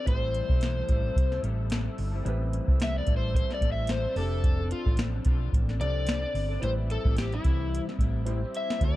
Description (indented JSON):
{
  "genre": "indie pop, bedroom pop",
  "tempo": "110 BPM",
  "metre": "4/4",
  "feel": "swing 55% on 16ths",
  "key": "A minor",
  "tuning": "A4 = 439 Hz",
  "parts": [
    { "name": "overdriven slide guitar", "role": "melody", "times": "0.0-9.0 s", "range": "E4 to E5", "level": "-33 LUFS", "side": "left 2 dB", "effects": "wide subtle chorus, ping-pong delay" },
    { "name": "electric guitar through a small old amp", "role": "accompaniment", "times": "0.0-9.0 s", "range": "A2 to A4", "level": "-37 LUFS", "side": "left 3 dB", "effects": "analog chorus, warbly pitch drift" },
    { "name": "warm upright piano", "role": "accompaniment", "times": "0.0-9.0 s", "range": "C4 to C5", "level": "-42 LUFS", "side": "right 3 dB", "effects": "cassette tape" },
    { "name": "hollow-body short-scale fingered electric bass", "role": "bass", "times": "0.1-9.0 s", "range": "F1 to D2", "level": "-29 LUFS", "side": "equal", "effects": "none" },
    { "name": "soft vintage rhythm box", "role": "drums", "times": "0.1-8.9 s", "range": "hi-hat, kick drum, snare drum", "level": "-26 LUFS", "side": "equal", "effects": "none" }
  ],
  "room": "little or no reverb",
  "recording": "dark, warm production",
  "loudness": "-25 LUFS",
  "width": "side -16 dB against mid",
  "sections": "0.0-8.8 A section",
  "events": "electric slide guitar solo 0.0-8.8; drum fill 8.3-8.8",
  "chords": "0.1 Am7; 4.2 F6; 6.6 Am7",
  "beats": "| 0.06 0.61 1.16 1.70 | 2.25 2.80 3.34 3.89 | 4.44 4.98 5.53 6.08 | 6.62 7.17 7.71 8.26 | 8.81"
}